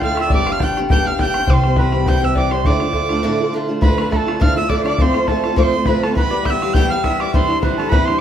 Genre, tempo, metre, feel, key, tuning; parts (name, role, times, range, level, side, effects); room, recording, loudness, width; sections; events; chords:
celtic folk, Celtic reel; 205 BPM; 4/4; swing 55% on 8ths; D dorian; A4 = 436 Hz
bright reedy mid whistle; melody; 0.0-8.2 s; A5 to G6; -22 LUFS; right 4 dB
hammered dulcimer; second line; 0.0-8.2 s; A4 to A5; -24 LUFS; right 1 dB
rich fiddle; second line; 0.0-8.2 s; A4 to G5; -27 LUFS; left 4 dB
picked steel-string acoustic guitar; accompaniment; 0.0-8.2 s; D2 to G4; -19 LUFS; equal
upright bass; bass; 0.0-3.2 s; G1 to D2; -22 LUFS; equal
bodhran; percussion; 0.0-8.1 s; -19 LUFS; equal
wet small room ambience, RT60 0.5 s; heard from further back in the room; -14 LUFS; side -9 dB against mid
0.0-3.8 A section; 3.8-8.2 A section
break 3.2-3.8
0.3 G; 1.5 C; 2.7 Dm; 5.0 F; 6.2 Em; 7.3 Cadd9